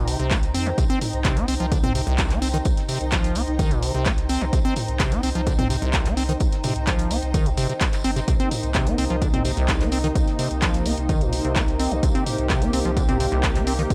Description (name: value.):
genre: acid house.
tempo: 128 BPM.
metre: 4/4.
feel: straight.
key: C minor.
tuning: A4 = 438 Hz.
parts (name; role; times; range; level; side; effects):
acid bass, square; riff; 0.0-13.8 s; C2 to C4; -28 LUFS; equal; sidechain pumping, delay.
warm sub bass; bass; 0.0-13.9 s; G1 to F2; -29 LUFS; equal; sidechain pumping.
granular cloud pad; texture; 0.0-13.9 s; Eb4 to Bb5; -33 LUFS; equal; built-in reverb, sidechain pumping.
damped 70s drum kit; drums; 0.1-13.9 s; hi-hat, snare drum, tambourine; -42 LUFS; equal; none.
punchy analog drum machine; drums; 0.1-13.9 s; handclaps, hi-hat, toms; -30 LUFS; equal; none.
electronic kick drum; drums; 0.3-13.9 s; none; -25 LUFS; equal; none.
warm analog pad; sustained chords; 8.3-13.9 s; C3 to G4; -31 LUFS; equal; chorus, tremolo, sidechain pumping.
room: little or no reverb.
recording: none.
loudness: -22 LUFS.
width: mono.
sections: 0.0-13.9 A section.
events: none.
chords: 0.0 Cm7.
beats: 0.31 | 0.78 1.25 1.72 2.19 | 2.65 3.12 3.59 4.06 | 4.53 5.00 5.47 5.94 | 6.40 6.87 7.34 7.81 | 8.28 8.75 9.22 9.69 | 10.15 10.62 11.09 11.56 | 12.03 12.50 12.97 13.44 | 13.90.